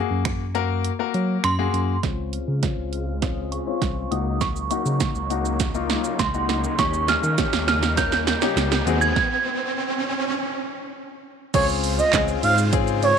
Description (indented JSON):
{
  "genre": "dance-pop",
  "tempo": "101 BPM",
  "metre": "4/4",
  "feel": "straight",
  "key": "Db major",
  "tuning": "A4 = 439 Hz",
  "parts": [
    { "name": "clear concert grand piano", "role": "accompaniment", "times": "0.0-13.1 s", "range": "Bb3 to Bb4", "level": "-27 LUFS", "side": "left 15 dB", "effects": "sidechain pumping, low-pass filter" },
    { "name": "mellow tine electric piano", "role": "bass", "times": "0.1-13.1 s", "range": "C2 to Gb3", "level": "-26 LUFS", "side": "equal", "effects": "sidechain pumping" },
    { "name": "punchy analog drum machine", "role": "drums", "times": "0.3-13.2 s", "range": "crash cymbal, finger snaps, handclaps, hi-hat, kick drum, shaker, snare drum", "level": "-24 LUFS", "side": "right 5 dB", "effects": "none" },
    { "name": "synth chime", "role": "melody", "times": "1.4-10.9 s", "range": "C6 to Ab6", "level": "-26 LUFS", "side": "right 5 dB", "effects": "ensemble chorus, low-pass filter, slapback echo" },
    { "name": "supersaw chords", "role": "sustained chords", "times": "2.0-13.2 s", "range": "C3 to C5", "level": "-32 LUFS", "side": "right 1 dB", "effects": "sidechain pumping, low-pass filter" },
    { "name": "riser", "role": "sound effects", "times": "4.0-10.4 s", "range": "none", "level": "-30 LUFS", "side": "right 2 dB", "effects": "none" },
    { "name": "expressive portamento lead", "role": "melody", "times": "11.5-13.2 s", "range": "Db5 to F5", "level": "-20 LUFS", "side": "right 3 dB", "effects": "chorus, sidechain pumping, slapback echo" }
  ],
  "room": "light reverb",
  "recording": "1960s-style stereo",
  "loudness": "-20 LUFS",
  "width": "side -7 dB against mid",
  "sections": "0.0-2.0 A section; 2.0-11.5 B section; 11.5-13.2 C section",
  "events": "kick muted 0.8-2.0; build-up 2.0-11.5; drum fill 2.0-9.2; filter sweep 2.0-11.5; riser 4.0-11.5; stop 9.2-11.5; drop 11.5-13.2",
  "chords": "0.0 Gbadd9; 2.0 Dbmaj7; 4.1 Gb6/Db; 6.8 Eb7; 8.9 Ab7/Eb; 11.5 Dbmaj7",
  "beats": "0.25 0.85 1.44 | 2.04 2.63 3.22 3.82 | 4.41 5.01 5.60 6.19 | 6.79 7.38 7.98 8.57 | 9.16 9.76 10.35 10.95 | 11.54 12.13 12.73"
}